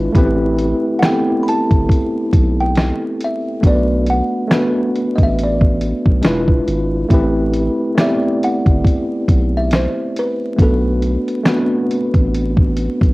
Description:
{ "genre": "lo-fi hip hop", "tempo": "69 BPM", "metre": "4/4", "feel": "swing 57% on 16ths", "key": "A dorian", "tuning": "A4 = 439 Hz", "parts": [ { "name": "tine electric piano", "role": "accompaniment", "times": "0.0-13.1 s", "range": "G#3 to D5", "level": "-17 LUFS", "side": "equal", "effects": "overdrive, fast stereo tremolo, cassette tape, low-pass filter" }, { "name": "soft dub sub bass", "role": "bass", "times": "0.0-13.1 s", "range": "E1 to B1", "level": "-19 LUFS", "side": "equal", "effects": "tube saturation" }, { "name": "dusty soul sampler-style drum kit", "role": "drums", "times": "0.1-13.1 s", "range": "finger snaps, hi-hat, kick drum, snare drum", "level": "-14 LUFS", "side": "equal", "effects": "none" }, { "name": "buzzing kalimba", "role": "melody", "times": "1.0-13.1 s", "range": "A4 to B5", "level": "-23 LUFS", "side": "equal", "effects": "low-pass filter, cassette tape" } ], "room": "light reverb", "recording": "home recording on cassette, vinyl crackle", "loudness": "-13 LUFS", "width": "side -21 dB against mid", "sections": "0.0-13.1 A section", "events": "none", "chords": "0.2 Am9; 3.6 Bm7; 6.2 E7b9; 7.1 Am9; 10.6 Bm7" }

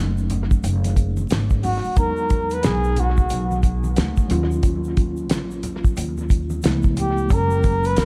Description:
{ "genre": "hip hop, jazz-hop", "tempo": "90 BPM", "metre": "4/4", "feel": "swing 62% on 16ths", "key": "unclear", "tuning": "A4 = 436 Hz", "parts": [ { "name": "mellow tine electric piano", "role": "accompaniment", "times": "0.0-8.1 s", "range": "E3 to E#4", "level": "-30 LUFS", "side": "equal", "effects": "dub echo" }, { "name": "upright bass", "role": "bass", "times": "0.0-8.1 s", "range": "F#1 to E2", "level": "-26 LUFS", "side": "equal", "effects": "none" }, { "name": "tube shaker and congas", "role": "percussion", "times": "0.2-8.1 s", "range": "none", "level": "-37 LUFS", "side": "equal", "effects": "dub echo" }, { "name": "cloth-damped thuddy drum kit", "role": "drums", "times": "0.3-8.1 s", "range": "hi-hat, kick drum, snare drum", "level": "-23 LUFS", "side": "equal", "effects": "none" }, { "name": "breathy flugelhorn", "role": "melody", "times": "1.6-8.1 s", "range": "F#4 to B4", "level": "-27 LUFS", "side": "equal", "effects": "dub echo" }, { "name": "vibraphone with soft mallets", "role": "second line", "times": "1.6-8.1 s", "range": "F#5 to B5", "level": "-33 LUFS", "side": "equal", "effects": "none" } ], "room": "light reverb, studio reverb", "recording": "echo-heavy mix, vinyl crackle", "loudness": "-21 LUFS", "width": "mono", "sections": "0.0-8.1 A section", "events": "none", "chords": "0.0 B9 (rootless); 2.0 Emaj9; 4.3 D#m9; 6.6 C#7alt; 7.3 F#add9" }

